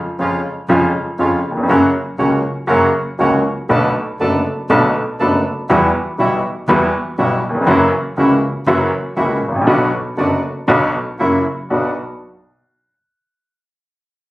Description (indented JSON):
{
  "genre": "tango",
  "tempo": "120 BPM",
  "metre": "4/4",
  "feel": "rubato",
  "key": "B minor",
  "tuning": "A4 = 440 Hz",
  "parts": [
    { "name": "warm upright piano", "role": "accompaniment", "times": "0.2-11.9 s", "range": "F#1 to F#4", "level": "-15 LUFS", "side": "equal", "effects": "none" },
    { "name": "bandoneon", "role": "stabs", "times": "0.2-11.9 s", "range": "G3 to A4", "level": "-22 LUFS", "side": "right 2 dB", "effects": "none" },
    { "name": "clear double bass", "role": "bass", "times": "0.2-11.9 s", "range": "F#1 to E#2", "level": "-25 LUFS", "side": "right 1 dB", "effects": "none" }
  ],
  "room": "moderate studio reverb, RT60 0.8 s",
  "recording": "recorded on a phone in the room, studio reverb, compression",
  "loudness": "-14 LUFS",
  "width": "side -18 dB against mid",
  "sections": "0.0-11.7 A section; 11.7-13.7 B section",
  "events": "none",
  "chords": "0.0 C#/E#; 1.7 F#; 3.7 Bm7; 5.7 Emadd9; 7.7 F#7; 9.7 Bm; 11.2 F#7; 11.7 Bm"
}